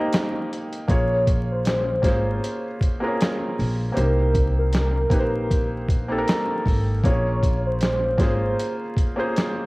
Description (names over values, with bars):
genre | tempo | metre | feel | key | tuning
lo-fi hip hop | 78 BPM | 4/4 | swing 56% on 16ths | Bb dorian | A4 = 440 Hz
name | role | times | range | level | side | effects
felt-muted upright piano | accompaniment | 0.0-9.7 s | Bb3 to Eb5 | -26 LUFS | equal | cassette tape
dusty soul sampler-style drum kit | drums | 0.1-9.6 s | hi-hat, kick drum, snare drum | -23 LUFS | equal | none
warm velvety synth lead | melody | 0.9-8.8 s | Bb4 to Db5 | -26 LUFS | equal | chorus, cassette tape
upright bass | bass | 0.9-8.5 s | Ab1 to C2 | -24 LUFS | equal | tube saturation
room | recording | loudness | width
light reverb | home recording on cassette, vinyl crackle | -20 LUFS | side -23 dB against mid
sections
0.0-9.7 A section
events
break 0.0-0.9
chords
0.0 Cm7; 0.9 Bbm9; 4.0 Cm7; 7.0 Bbm9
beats
0.12 | 0.89 1.66 2.43 3.19 | 3.96 4.73 5.50 6.27 | 7.04 7.81 8.58 9.35